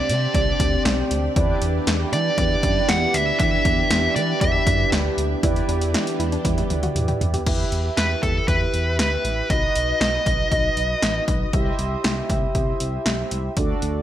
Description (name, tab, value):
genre	synth-pop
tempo	118 BPM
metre	4/4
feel	straight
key	E minor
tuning	A4 = 439 Hz
part	dark smooth lead guitar	melody	0.0-4.9, 8.0-11.2 s	A4 to F#5	-24 LUFS	right 1 dB	overdrive, shimmer reverb, digital delay
part	mellow synth brass	accompaniment	0.0-14.0 s	C4 to E5	-27 LUFS	right 2 dB	chorus, shimmer reverb
part	string machine, full ensemble	sustained chords	0.0-7.4 s	C3 to G4	-29 LUFS	equal	ensemble chorus, shimmer reverb
part	smooth gliding synth bass	bass	0.1-14.0 s	A1 to E3	-25 LUFS	equal	none
part	punchy analog drum machine	drums	0.1-13.9 s	crash cymbal, hi-hat, kick drum, snare drum, toms	-23 LUFS	equal	gated reverb
part	soft round pluck	arpeggios	5.4-7.4 s	D4 to G4	-32 LUFS	equal	chorus, shimmer reverb, digital delay
room	moderate plate reverb, RT60 1.6 s, digital ambience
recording	bright 1980s-style digital production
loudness	-18 LUFS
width	side -12 dB against mid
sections	0.0-5.4 A section; 5.4-7.5 B section; 7.5-14.0 C section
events	drum fill 6.4-7.5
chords	0.0 Csus2; 1.4 Em7; 7.5 Em; 9.5 B; 11.5 C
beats	0.35 0.85 | 1.36 1.87 2.38 2.89 | 3.40 3.91 4.41 4.92 | 5.43 5.94 6.45 6.96 | 7.46 7.97 8.48 8.99 | 9.50 10.01 10.52 11.03 | 11.53 12.04 12.55 13.06 | 13.57